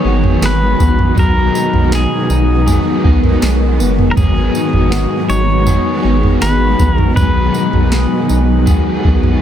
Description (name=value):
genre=dream pop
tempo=80 BPM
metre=4/4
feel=straight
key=B major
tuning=A4 = 439 Hz
part: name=pedal steel guitar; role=melody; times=0.0-9.4 s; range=G#4 to C#5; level=-20 LUFS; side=equal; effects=tape echo
part: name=crunchy overdriven guitar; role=accompaniment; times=0.0-9.4 s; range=G#2 to G#4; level=-22 LUFS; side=right 2 dB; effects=tremolo, analog chorus
part: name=granular cloud pad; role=sustained chords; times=0.0-9.4 s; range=D#3 to F#4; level=-18 LUFS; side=equal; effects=built-in reverb
part: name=electric guitar at the edge of break-up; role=arpeggios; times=0.0-9.4 s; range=F#3 to G#4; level=-19 LUFS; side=left 5 dB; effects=lush chorus, tape echo
part: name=round analog bass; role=bass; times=0.0-9.4 s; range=F#1 to B1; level=-15 LUFS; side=equal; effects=none
part: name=vibraphone with medium mallets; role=texture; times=0.0-7.5 s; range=G#4 to B4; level=-30 LUFS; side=right 4 dB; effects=none
part: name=soft vintage rhythm box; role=drums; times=0.2-9.4 s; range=kick drum, snare drum, tambourine, toms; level=-15 LUFS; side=right 1 dB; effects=none
room=light reverb, digital ambience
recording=none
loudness=-10 LUFS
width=side -10 dB against mid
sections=0.0-9.4 A section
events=none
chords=0.0 G#m7; 1.2 B6; 4.2 G#m7; 7.2 B6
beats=0.42 | 1.17 1.92 2.67 3.42 | 4.17 4.92 5.67 6.42 | 7.17 7.92 8.67